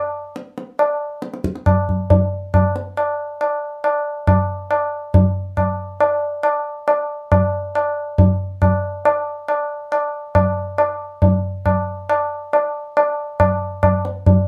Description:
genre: indian classical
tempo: free time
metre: none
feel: none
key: none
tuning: none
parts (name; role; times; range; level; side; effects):
- tabla; percussion; 0.4-14.4 s; none; -19 LUFS; equal; none
room: moderate studio reverb, RT60 0.6 s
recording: none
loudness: -19 LUFS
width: mono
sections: 0.0-14.5 A section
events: none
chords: none

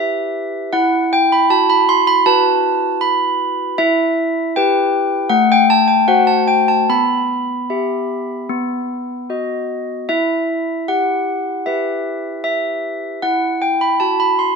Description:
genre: classical, tune for handbells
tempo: 77 BPM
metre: 4/4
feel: straight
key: E minor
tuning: A4 = 440 Hz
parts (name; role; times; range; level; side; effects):
- handbells; solo; 0.0-14.6 s; A3 to C6; -14 LUFS; equal; none
room: moderate scoring stage reverb, RT60 1.9 s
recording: close, detailed microphones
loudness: -14 LUFS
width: side -4 dB against mid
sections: 0.0-14.6 A section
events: none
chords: 0.0 Em; 0.7 B5/E; 3.8 Em; 5.3 F#dim/A; 6.9 Em/B; 8.5 B; 10.1 Em; 13.2 B5/E

